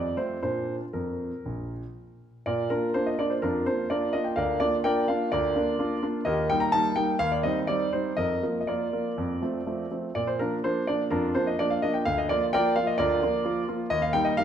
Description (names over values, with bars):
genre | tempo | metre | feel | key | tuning
classical-period piano sonatina | 117-132 BPM | 4/4 | rubato | Bb major | A4 = 439 Hz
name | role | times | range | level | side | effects
clear concert grand piano | solo | 0.0-14.4 s | Bb1 to Bb5 | -24 LUFS | equal | none
room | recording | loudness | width
wet recital hall reverb, RT60 1.9 s | none | -24 LUFS | side -9 dB against mid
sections
0.0-2.5 A section; 2.5-14.4 A section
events
none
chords
0.4 Bb; 4.4 Bb/D; 6.3 Eb; 7.2 Cm/Eb; 8.2 Bb/F; 9.2 F; 10.2 Bb; 12.1 Bb/D; 13.9 Eb